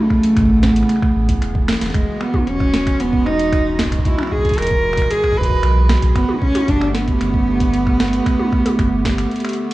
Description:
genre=IDM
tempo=114 BPM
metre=4/4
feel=straight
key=unclear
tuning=A4 = 440 Hz
part: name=warm cello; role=melody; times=0.0-9.7 s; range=G#3 to B4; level=-18 LUFS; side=right 1 dB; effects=digital delay
part: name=warbly tape-like pad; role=sustained chords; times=0.0-9.7 s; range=A#2 to G4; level=-25 LUFS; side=equal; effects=chorus, built-in reverb
part: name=electro analog drum machine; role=drums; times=0.1-9.7 s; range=finger snaps, hi-hat, snare drum, toms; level=-24 LUFS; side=equal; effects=none
part: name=electronic kick drum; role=drums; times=0.1-9.2 s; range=none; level=-19 LUFS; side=equal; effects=none
part: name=warm sub bass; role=bass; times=0.4-9.2 s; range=E1 to B1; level=-20 LUFS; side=equal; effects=tube saturation
room=light reverb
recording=worn, warbling old tape, cassette tape, warbly pitch drift, studio reverb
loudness=-14 LUFS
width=side -17 dB against mid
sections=0.0-9.7 A section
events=break 9.3-9.7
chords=0.0 A; 1.9 Eadd9; 6.2 Gadd9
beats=0.37 0.89 1.42 | 1.95 2.47 3.00 3.52 | 4.05 4.58 5.10 5.63 | 6.16 6.68 7.21 7.74 | 8.26 8.79 9.31

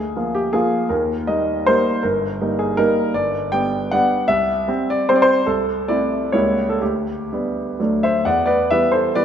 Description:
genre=classical, romantic triple-time dance for piano with dotted rhythms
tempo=118-173 BPM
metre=3/4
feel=rubato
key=Eb major, G major from 3.1 s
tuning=A4 = 440 Hz
part: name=clear concert grand piano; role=solo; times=0.0-9.2 s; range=G1 to G5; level=-16 LUFS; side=equal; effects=none
room=moderate concert hall reverb, RT60 1.9 s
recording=minimal, uncompressed stereo recording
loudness=-16 LUFS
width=side -8 dB against mid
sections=0.0-8.3 A section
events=none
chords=0.0 Bb7/D; 0.9 Eb; 2.0 Eb/G; 3.1 G; 4.3 C; 5.5 Am/C; 6.3 C#dim7; 6.8 G/D; 7.8 D; 8.3 Em7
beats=0.15 0.54 | 0.91 1.29 1.68 | 2.04 2.41 2.78 | 3.14 3.53 3.92 | 4.29 4.69 5.10 | 5.48 5.89 6.33 | 6.81 7.30 7.79 | 8.26 8.70 9.14

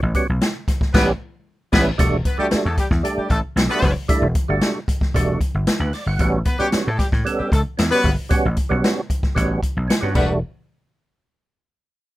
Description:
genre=funk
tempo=114 BPM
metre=4/4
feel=straight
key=E dorian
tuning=A4 = 441 Hz
part: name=vintage slap bass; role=bass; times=0.0-10.4 s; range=E1 to A2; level=-21 LUFS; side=equal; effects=none
part: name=percussive tonewheel organ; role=stabs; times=0.1-10.4 s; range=G3 to F#5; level=-22 LUFS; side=right 3 dB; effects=overdrive, chorus vibrato, slow rotary speaker
part: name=swinging big-band drum kit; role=drums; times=0.1-10.3 s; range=crash cymbal, hi-hat, kick drum, snare drum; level=-20 LUFS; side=equal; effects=none
part: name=clear horn section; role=second line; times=0.9-10.3 s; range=G3 to B4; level=-22 LUFS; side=left 2 dB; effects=none
room=little or no reverb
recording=rough home demo mix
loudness=-17 LUFS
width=side -16 dB against mid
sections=0.0-2.0 A section; 2.0-10.4 B section; 10.4-12.2 C section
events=band accent 0.9-2.0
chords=0.0 A9; 2.0 Em11; 6.2 A13; 10.2 Em11; 10.4 N.C.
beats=0.40 0.93 1.46 | 1.99 2.51 3.04 3.57 | 4.09 4.62 5.15 5.68 | 6.20 6.73 7.26 7.78 | 8.31 8.84 9.36 9.89

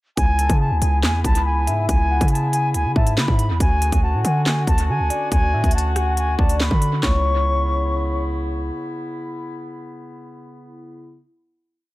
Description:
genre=hip hop, drill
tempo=140 BPM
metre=4/4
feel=half-time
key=C# phrygian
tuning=A4 = 440 Hz
part: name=silver concert flute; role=melody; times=0.2-8.3 s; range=G#5 to C#6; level=-24 LUFS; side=equal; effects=low-pass filter, analog delay
part: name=dark woodwind section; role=sustained chords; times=0.2-11.2 s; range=C#3 to F#4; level=-30 LUFS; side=left 2 dB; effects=none
part: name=hard-hitting 808-style bass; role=bass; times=0.2-8.7 s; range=C#2 to D3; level=-20 LUFS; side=equal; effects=none
part: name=drill drum kit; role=drums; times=0.2-7.1 s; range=handclaps, hi-hat, kick drum, rim click, snare drum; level=-20 LUFS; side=equal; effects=none
part: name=soft octave-layered synth lead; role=second line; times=0.4-8.3 s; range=C#5 to B5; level=-28 LUFS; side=left 3 dB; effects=chorus, analog delay
room=light reverb, digital ambience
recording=echo-heavy mix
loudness=-17 LUFS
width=side -18 dB against mid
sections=0.2-7.0 hook; 7.0-10.5 final chord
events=none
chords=0.2 C#m7; 3.6 Dmaj7; 7.0 C#m7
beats=| 0.17 0.60 1.03 1.46 | 1.89 2.32 2.75 3.17 | 3.60 4.03 4.46 4.89 | 5.32 5.75 6.17 6.60 | 7.03 7.46 7.89 8.32 | 8.74 9.17 9.60 10.03

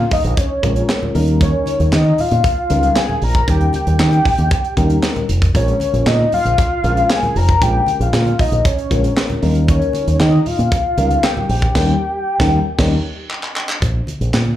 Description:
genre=early-eighties boogie funk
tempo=116 BPM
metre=4/4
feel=straight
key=unclear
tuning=A4 = 440 Hz
part: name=warm velvety synth lead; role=melody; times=0.0-13.3 s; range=Db5 to Bb5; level=-19 LUFS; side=left 1 dB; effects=chorus, tremolo, slapback echo
part: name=FM electric piano with tremolo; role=accompaniment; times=0.0-13.0 s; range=G3 to Bb4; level=-22 LUFS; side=left 3 dB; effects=phaser, slapback echo
part: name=fingered electric bass with an envelope filter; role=bass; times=0.0-14.5 s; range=F1 to Eb3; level=-16 LUFS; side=equal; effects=none
part: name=tight funk drum kit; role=drums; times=0.1-14.5 s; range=crash cymbal, handclaps, hi-hat, kick drum, snare drum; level=-19 LUFS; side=equal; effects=none
part: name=congas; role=percussion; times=0.1-14.6 s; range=none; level=-27 LUFS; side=right 1 dB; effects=none
room=light reverb, small room ambience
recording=live gig heard through the venue's PA, club reverb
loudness=-13 LUFS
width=side -12 dB against mid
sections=0.0-13.8 A section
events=band accent 11.8-13.8; drum fill 13.3-13.8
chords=0.0 Bbm7; 1.1 Eb7; 5.5 Bbm7; 9.4 Eb7; 13.8 Bb5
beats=0.37 0.89 | 1.41 1.93 2.44 2.96 | 3.48 4.00 4.51 5.03 | 5.55 6.06 6.58 7.10 | 7.62 8.13 8.65 9.17 | 9.69 10.20 10.72 11.24 | 11.75 12.27 12.79 13.30 | 13.82 14.34

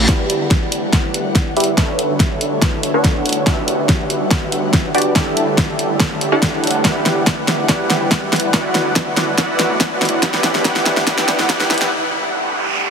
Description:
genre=future bass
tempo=142 BPM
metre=4/4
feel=half-time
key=E dorian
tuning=A4 = 440 Hz
part: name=ethereal airy pad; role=sustained chords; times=0.0-12.9 s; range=D3 to F#5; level=-26 LUFS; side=equal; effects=ensemble chorus, built-in reverb, sidechain pumping
part: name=wide detuned saw bass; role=bass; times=0.0-11.9 s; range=E1 to E2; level=-27 LUFS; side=equal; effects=none
part: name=reverse cymbal, riser and noise sweep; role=sound effects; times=0.0-0.1, 9.1-12.9 s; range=none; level=-25 LUFS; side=right 1 dB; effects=none
part: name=supersaw stab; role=riff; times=0.1-11.9 s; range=D4 to F#5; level=-18 LUFS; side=equal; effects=sidechain pumping, low-pass filter, ping-pong delay
part: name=electronic kick drum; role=drums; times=0.1-11.6 s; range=none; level=-18 LUFS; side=equal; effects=none
part: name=pop drum kit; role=drums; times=0.1-11.9 s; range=hi-hat, snare drum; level=-18 LUFS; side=equal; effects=none
room=moderate huge ambient reverb, RT60 6.5 s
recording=heavily compressed radio sound, high-pass filter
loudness=-14 LUFS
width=side -6 dB against mid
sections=0.1-12.9 A section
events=build-up 0.1-12.9; drum fill 0.1-11.9; filter sweep on supersaw synth 0.1-12.9; filter sweep 0.1-12.9; break 11.9-12.9; noise sweep 11.9-12.9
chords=0.1 Em9; 1.8 Bm11; 3.5 Em9/B; 5.2 A7sus4; 6.8 Em9; 8.5 Bm7; 10.2 Em9/B; 11.9 A7sus4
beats=| 0.09 0.51 0.93 1.35 | 1.78 2.20 2.62 3.04 | 3.47 3.89 4.31 4.74 | 5.16 5.58 6.00 6.42 | 6.85 7.27 7.69 8.12 | 8.54 8.96 9.38 9.80 | 10.23 10.65 11.07 11.49 | 11.92 12.34 12.76

